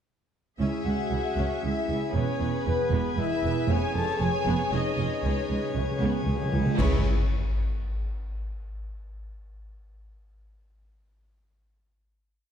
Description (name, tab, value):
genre	cinematic, epic orchestral film score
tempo	116 BPM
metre	3/4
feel	straight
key	C# minor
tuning	A4 = 437 Hz
part	warm symphonic violin section	melody	0.6-7.1 s	B4 to E5	-37 LUFS	left 6 dB	none
part	warm symphonic violin section	second line	0.6-7.1 s	B4 to A5	-36 LUFS	left 6 dB	none
part	rich symphonic viola section	accompaniment	0.6-7.1 s	E3 to G#4	-36 LUFS	right 1 dB	none
part	pipe organ, principal chorus	sustained chords	0.6-7.1 s	B3 to G#5	-35 LUFS	right 1 dB	none
part	warm French horn section	sustained chords	0.6-7.0 s	B3 to A4	-34 LUFS	left 4 dB	none
part	warm trumpet section	stabs	0.6-7.0 s	B4 to A5	-36 LUFS	equal	none
part	rich symphonic cello section	bass	0.6-7.1 s	C#2 to E#2	-30 LUFS	right 2 dB	none
part	warm symphonic double bass section	bass	0.6-7.1 s	E1 to C#2	-31 LUFS	right 4 dB	none
part	cymbal swell, clash cymbals and concert bass drum	percussion	3.7-7.8 s	none	-30 LUFS	left 1 dB	none
part	timpani	percussion	5.2-7.0 s	C#3	-31 LUFS	equal	none
room	moderate scoring stage reverb, RT60 2.1 s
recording	dark, warm production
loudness	-24 LUFS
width	side -8 dB against mid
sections	0.6-6.8 theme; 6.8-8.3 final chord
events	timpani fill 5.2-6.8; band accent 6.8-7.3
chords	0.6 C#m; 2.2 E; 3.7 C#7/E#; 5.2 C#7(no3); 6.8 C#m7